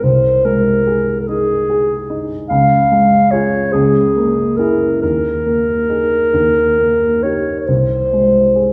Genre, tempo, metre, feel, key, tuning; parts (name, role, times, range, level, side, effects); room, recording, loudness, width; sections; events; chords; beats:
classical, romantic duo for clarinet and grand piano; 44-50 BPM (dotted quarters); 6/8; rubato; Ab major; A4 = 439 Hz
dark clarinet; melody; 0.0-8.7 s; Ab4 to F5; -16 LUFS; equal
warm baby grand piano; accompaniment; 0.0-8.7 s; C2 to Ab4; -19 LUFS; equal
wet recital hall reverb, RT60 1.5 s; heard from further back in the room; -14 LUFS; mono
0.0-8.7 A section
0.0 Ab/C; 2.5 Db; 3.7 Bbm7b5/Db; 5.0 Ebsus4; 6.3 Eb; 7.7 Ab/C
| 0.03 1.28 | 2.50 3.73 | 5.02 6.33 | 7.67